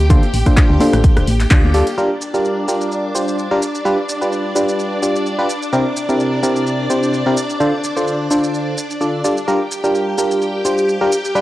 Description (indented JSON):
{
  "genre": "piano house",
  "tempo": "128 BPM",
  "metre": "4/4",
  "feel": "swing 55% on 16ths",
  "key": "G dorian",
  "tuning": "A4 = 440 Hz",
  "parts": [
    { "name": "string machine, violins", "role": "sustained chords", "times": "0.0-11.4 s", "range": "D4 to G5", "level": "-22 LUFS", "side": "equal", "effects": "ensemble chorus, sidechain pumping" },
    { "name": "solid FM bass", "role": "bass", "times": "0.0-1.8 s", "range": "D1 to D2", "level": "-16 LUFS", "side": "equal", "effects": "sidechain pumping" },
    { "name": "punchy analog drum machine", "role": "drums", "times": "0.0-11.4 s", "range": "handclaps, hi-hat, rim click, shaker", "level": "-24 LUFS", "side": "equal", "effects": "overdrive" },
    { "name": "barking FM electric piano", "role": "riff", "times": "0.1-11.4 s", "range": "C3 to D5", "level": "-17 LUFS", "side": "equal", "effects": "chorus, sidechain pumping, low-pass filter" },
    { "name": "electronic kick drum", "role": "drums", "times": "0.1-1.6 s", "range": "none", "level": "-11 LUFS", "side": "equal", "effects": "none" },
    { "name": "congas and tambourine", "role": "percussion", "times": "0.1-2.0 s", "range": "none", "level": "-24 LUFS", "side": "left 1 dB", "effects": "none" }
  ],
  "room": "light reverb, digital ambience",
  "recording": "dry, gritty hardware recording, transformer saturation, cassette tape",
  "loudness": "-14 LUFS",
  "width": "side -15 dB against mid",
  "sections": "0.0-2.0 A section; 2.0-11.4 B section",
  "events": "band accent 1.5",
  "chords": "0.1 Dm7; 2.0 Gm7; 3.6 G7; 5.5 C7; 7.6 Dm7; 9.5 Gm7"
}